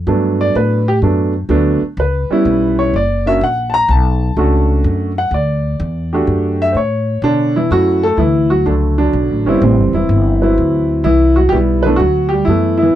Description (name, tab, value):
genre	jazz piano trio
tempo	126 BPM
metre	4/4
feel	swing 68% on 8ths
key	D major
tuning	A4 = 440 Hz
part	upright bass	bass	0.0-12.9 s	E1 to B2	-16 LUFS	left 1 dB	none
part	warm upright piano	melody	0.1-13.0 s	C3 to A#5	-14 LUFS	right 1 dB	none
room	light reverb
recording	dry, close 1970s-style studio recording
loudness	-12 LUFS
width	side -12 dB against mid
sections	0.0-7.7 A section; 7.7-13.0 B section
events	upright piano solo 0.0-7.7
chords	0.1 Gmaj9; 2.0 C#m7b5; 2.9 F#; 3.9 Bm9; 5.8 Em11; 6.8 Aadd9; 7.7 Dmaj7; 9.6 Am7; 10.6 D13; 11.5 G69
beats	| 0.07 0.55 1.02 1.50 | 1.98 2.46 2.94 3.41 | 3.89 4.37 4.84 5.32 | 5.80 6.28 6.75 7.23 | 7.71 8.19 8.66 9.14 | 9.62 10.09 10.57 11.05 | 11.52 12.00 12.48 12.95